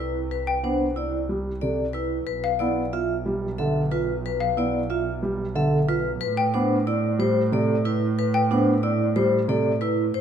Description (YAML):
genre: classical, minimalist pattern music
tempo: 183 BPM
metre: 6/4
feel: straight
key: A minor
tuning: A4 = 440 Hz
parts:
  - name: vibraphone with hard mallets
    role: melody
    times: 0.0-10.2 s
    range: B4 to E5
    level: -28 LUFS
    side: left 7 dB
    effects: none
  - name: vibraphone with medium mallets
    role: arpeggios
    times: 0.0-10.0 s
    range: D4 to A4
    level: -28 LUFS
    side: right 6 dB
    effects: none
  - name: clear double bass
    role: bass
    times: 0.0-10.2 s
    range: B1 to A2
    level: -27 LUFS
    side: right 3 dB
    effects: none
  - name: xylophone with rubber mallets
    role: arpeggios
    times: 0.5-8.6 s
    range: F5 to G5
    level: -27 LUFS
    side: left 4 dB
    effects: none
  - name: dark grand piano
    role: accompaniment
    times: 0.6-9.7 s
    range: C3 to B3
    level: -26 LUFS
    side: equal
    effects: none
room: moderate recital hall reverb, RT60 1.2 s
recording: none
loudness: -21 LUFS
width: side -8 dB against mid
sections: 0.0-10.2 A section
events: none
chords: 0.0 C; 2.3 G13/B (rootless); 6.2 Am9